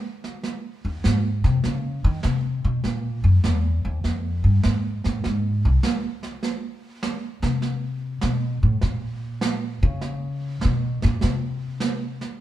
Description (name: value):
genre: jazz piano trio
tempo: 100 BPM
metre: 4/4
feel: swing 68% on 8ths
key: unclear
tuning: A4 = 440 Hz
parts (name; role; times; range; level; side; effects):
- snare drum and brushed snare drum; drums; 0.2-12.4 s; none; -28 LUFS; right 4 dB; none
- upright bass; bass; 0.8-12.2 s; C2 to Eb3; -21 LUFS; left 1 dB; none
room: moderate stone room reverb, RT60 1.5 s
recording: band playing live in one room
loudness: -21 LUFS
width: side -13 dB against mid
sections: 0.0-12.4 A section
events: upright bass solo 0.0-12.4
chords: none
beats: 0.44 1.04 | 1.64 2.24 2.84 3.44 | 4.04 4.63 5.23 5.83 | 6.43 7.03 7.63 8.23 | 8.82 9.42 10.02 10.62 | 11.22 11.82